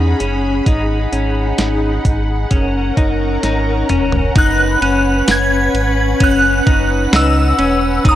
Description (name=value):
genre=dream pop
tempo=65 BPM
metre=4/4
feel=straight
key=unclear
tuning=A4 = 439 Hz
part: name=string machine, violas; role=sustained chords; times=0.0-8.2 s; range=C#4 to B5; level=-19 LUFS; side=left 1 dB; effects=ensemble chorus
part: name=clean electric guitar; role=arpeggios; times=0.0-8.2 s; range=C#4 to D#4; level=-20 LUFS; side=left 2 dB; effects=analog chorus, analog delay
part: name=sub bass with octave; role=bass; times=0.0-8.2 s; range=E1 to E2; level=-18 LUFS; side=equal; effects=none
part: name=detuned 8-bit digital drum machine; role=drums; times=0.2-8.2 s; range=hi-hat, kick drum, ride cymbal, snare drum, tambourine, toms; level=-15 LUFS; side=equal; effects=none
part: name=shimmering bell with halo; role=melody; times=4.4-8.2 s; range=D#6 to G#6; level=-16 LUFS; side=equal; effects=ensemble chorus, analog delay
part: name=glockenspiel with rubber mallets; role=texture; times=4.7-8.2 s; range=A#5 to B5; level=-29 LUFS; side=right 2 dB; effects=analog delay
room=digital ambience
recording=dry, gritty hardware recording, cassette tape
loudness=-12 LUFS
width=side -12 dB against mid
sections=0.0-4.4 A section; 4.4-8.2 B section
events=drum fill 3.4-4.4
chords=0.0 C#m7; 0.7 G#m7; 2.5 F#; 4.4 F#sus4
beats=| 0.67 1.59 2.51 3.43 | 4.36 5.28 6.20 7.13 | 8.05